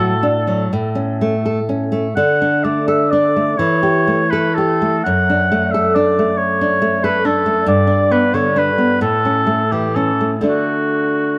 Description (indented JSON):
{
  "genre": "romantic duo for oboe and classical guitar",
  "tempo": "40-46 BPM (dotted quarters)",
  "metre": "6/8",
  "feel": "rubato",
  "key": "D major",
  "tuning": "A4 = 440 Hz",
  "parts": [
    { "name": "warm oboe", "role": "melody", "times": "0.0-11.4 s", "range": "F#4 to F#5", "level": "-20 LUFS", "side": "equal", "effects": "tape echo" },
    { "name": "nylon-string guitar", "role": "accompaniment", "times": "0.0-11.4 s", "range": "F#2 to A4", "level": "-18 LUFS", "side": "equal", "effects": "none" }
  ],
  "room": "light reverb",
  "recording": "close, detailed microphones",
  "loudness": "-16 LUFS",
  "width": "mono",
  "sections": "0.0-11.4 A section",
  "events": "none",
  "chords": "0.0 D/A; 0.7 A; 2.2 D5; 3.6 A7/E; 5.0 D/F#; 7.7 G; 9.0 A; 10.4 D"
}